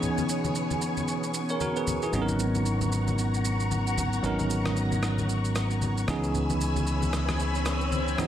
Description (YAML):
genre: amapiano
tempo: 114 BPM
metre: 4/4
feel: swing 58% on 16ths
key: C# dorian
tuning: A4 = 442 Hz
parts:
  - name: bell-like tine electric piano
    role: accompaniment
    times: 0.0-8.3 s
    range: E3 to C#5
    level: -29 LUFS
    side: right 2 dB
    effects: medium stereo tremolo
  - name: string machine, cellos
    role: sustained chords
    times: 0.0-8.3 s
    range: B3 to E6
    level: -32 LUFS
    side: left 3 dB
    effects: phaser, ensemble chorus
  - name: electronic shaker and rim click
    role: drums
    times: 0.0-8.3 s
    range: none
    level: -36 LUFS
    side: right 1 dB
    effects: none
  - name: congas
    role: percussion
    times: 0.0-8.3 s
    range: none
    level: -35 LUFS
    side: left 4 dB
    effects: none
  - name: fingered electric bass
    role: bass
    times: 2.1-8.1 s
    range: G#1 to C#2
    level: -28 LUFS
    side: equal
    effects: none
  - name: swell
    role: sound effects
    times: 7.0-8.3 s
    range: none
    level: -37 LUFS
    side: left 4 dB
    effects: none
room: digital ambience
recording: none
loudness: -25 LUFS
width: side -10 dB against mid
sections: 0.0-8.3 A section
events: swell 7.0-8.3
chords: 0.0 C#m7; 2.1 G#m11; 6.1 C#m7